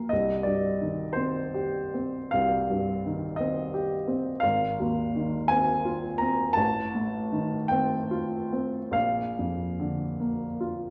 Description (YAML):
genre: classical, romantic nocturne for solo piano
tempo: 46-59 BPM (dotted quarters)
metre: 12/8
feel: rubato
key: unclear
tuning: A4 = 439 Hz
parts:
  - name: warm upright piano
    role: solo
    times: 0.0-10.9 s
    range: Ab1 to Bb5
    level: -28 LUFS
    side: equal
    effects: none
room: wet recital hall reverb, RT60 1.6 s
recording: heard from further back in the room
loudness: -28 LUFS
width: mono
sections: 0.0-10.9 A section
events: none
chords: 0.1 Cm; 4.4 Fm7/Ab; 6.6 F7/A; 8.9 Bb